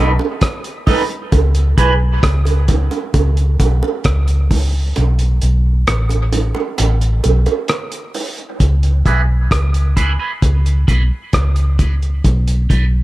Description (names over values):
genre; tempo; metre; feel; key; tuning
dub reggae; 66 BPM; 4/4; straight; C# minor; A4 = 441 Hz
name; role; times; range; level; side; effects
electric guitar at the edge of break-up; accompaniment; 0.0-1.9, 9.1-12.8 s; D#4 to B4; -21 LUFS; right 3 dB; phaser, high-pass filter, dub echo
vintage muted fingered electric bass; bass; 0.0-13.0 s; A1 to C#2; -14 LUFS; equal; none
bongos; percussion; 0.2-8.4 s; none; -23 LUFS; right 6 dB; high-pass filter on perc, dub echo
cloth-damped thuddy drum kit; drums; 0.4-12.9 s; hi-hat, kick drum, rim click; -18 LUFS; equal; none
room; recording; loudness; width
little or no reverb; lossy compression artefacts; -13 LUFS; side -17 dB against mid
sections
0.0-8.6 A section; 8.6-13.0 B section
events
kick muted 5.0-8.6; filter sweep 5.0-13.0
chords
0.0 B7; 1.3 C#7(no3); 5.0 Asus2; 8.6 C#m7; 12.2 B7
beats
0.41 | 1.32 2.23 3.14 4.05 | 4.96 5.87 6.78 7.69 | 8.60 9.51 10.42 11.33 | 12.24